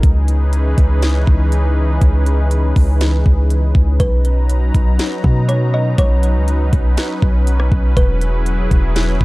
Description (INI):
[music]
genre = hip hop, atmospheric cloud-rap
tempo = 121 BPM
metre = 4/4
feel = half-time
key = B major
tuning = A4 = 440 Hz
[part]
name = warm analog pad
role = sustained chords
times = 0.0-9.2 s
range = E3 to A#5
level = -22 LUFS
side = left 1 dB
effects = chorus, sidechain pumping
[part]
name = warm 808-style bass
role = bass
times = 0.0-9.2 s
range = E1 to B2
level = -14 LUFS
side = equal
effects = none
[part]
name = trap drum kit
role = drums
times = 0.0-9.2 s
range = hi-hat, kick drum, rim click, snare drum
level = -16 LUFS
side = equal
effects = none
[part]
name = kalimba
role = melody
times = 4.0-8.9 s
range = B4 to D#5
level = -25 LUFS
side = right 1 dB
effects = low-pass filter, digital delay
[sound]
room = digital ambience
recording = dark, warm production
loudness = -12 LUFS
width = side -20 dB against mid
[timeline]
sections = 0.0-4.0 A section; 4.0-9.2 B section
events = none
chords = 0.0 C#m9; 4.0 Bmaj9; 8.0 E69